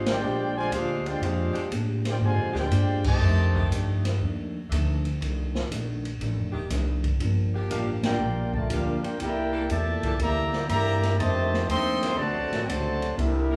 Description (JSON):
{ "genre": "jazz, big band swing", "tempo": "120 BPM", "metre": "4/4", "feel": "swing 67% on 8ths", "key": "F major", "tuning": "A4 = 440 Hz", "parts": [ { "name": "clear trumpet section", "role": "melody", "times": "0.0-3.7, 7.7-13.6 s", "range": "D4 to C6", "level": "-32 LUFS", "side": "equal", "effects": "none" }, { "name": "mellow trombone section", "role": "second line", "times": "0.0-3.7, 7.7-13.6 s", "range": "Bb2 to G4", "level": "-33 LUFS", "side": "equal", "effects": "none" }, { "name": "vintage hollow-body jazz guitar", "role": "accompaniment", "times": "0.0-13.5 s", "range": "F2 to A4", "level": "-37 LUFS", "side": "equal", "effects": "none" }, { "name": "upright bass", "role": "bass", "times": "0.0-13.6 s", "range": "Eb1 to A2", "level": "-29 LUFS", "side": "equal", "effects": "none" }, { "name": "swinging big-band drum kit", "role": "drums", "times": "0.1-13.3 s", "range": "crash cymbal, hi-hat, kick drum, ride cymbal, snare drum", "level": "-35 LUFS", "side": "equal", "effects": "none" }, { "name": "warm saxophone section", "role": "sustained chords", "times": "0.2-13.6 s", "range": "D3 to Bb4", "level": "-40 LUFS", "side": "equal", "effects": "none" } ], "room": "moderate large studio reverb, RT60 1.2 s", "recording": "band playing live in one room, small room ambience", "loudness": "-26 LUFS", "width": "mono", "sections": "0.0-13.6 A section", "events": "band accent 0.0, 3.0, 7.9", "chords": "0.0 Bb13; 3.2 F13; 7.2 Gm7; 9.2 C13; 11.2 F13; 12.2 D7" }